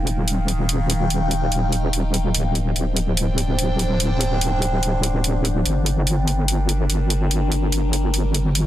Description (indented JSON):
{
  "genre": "heavy wobble dubstep",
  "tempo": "145 BPM",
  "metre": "4/4",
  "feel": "swing 54% on 16ths, half-time",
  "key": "G minor",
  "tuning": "A4 = 441 Hz",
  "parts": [
    { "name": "evolving wavetable pad", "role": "sustained chords", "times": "0.0-8.7 s", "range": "D3 to G5", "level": "-26 LUFS", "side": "left 1 dB", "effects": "phaser, built-in reverb" },
    { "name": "wobble bass", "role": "bass", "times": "0.0-8.7 s", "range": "D1 to G1", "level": "-20 LUFS", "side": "equal", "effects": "chorus, overdrive" },
    { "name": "electronic hi-hat", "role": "drums", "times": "0.1-8.6 s", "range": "none", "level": "-24 LUFS", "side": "right 1 dB", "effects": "none" }
  ],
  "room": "little or no reverb",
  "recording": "dense, heavily limited modern master",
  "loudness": "-18 LUFS",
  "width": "side -13 dB against mid",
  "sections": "0.0-8.7 A section",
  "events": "none",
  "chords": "0.0 Ebadd9; 2.3 D7sus4; 5.7 Gm"
}